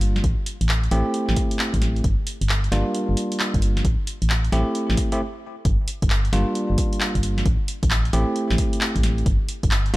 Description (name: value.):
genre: UK garage, two-step garage.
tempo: 133 BPM.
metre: 4/4.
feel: swing 65% on 16ths.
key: unclear.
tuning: A4 = 443 Hz.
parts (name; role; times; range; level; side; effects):
bell-like tine electric piano; stabs; 0.0-10.0 s; G3 to G4; -25 LUFS; equal; ping-pong delay.
organ-like FM bass; bass; 0.0-10.0 s; G1 to A1; -21 LUFS; equal; none.
punchy analog drum machine; drums; 0.0-10.0 s; handclaps, hi-hat, snare drum; -27 LUFS; equal; none.
electronic kick drum; drums; 0.2-9.7 s; none; -23 LUFS; equal; none.
room: little or no reverb.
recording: none.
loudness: -19 LUFS.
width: side -19 dB against mid.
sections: 0.0-5.7 A section; 5.7-10.0 B section.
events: stop 5.2-5.7; drop 5.7-10.0.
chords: 0.2 Am7; 2.0 Gm7; 3.8 Am7; 5.7 Gm7; 7.5 Am7; 9.3 N.C..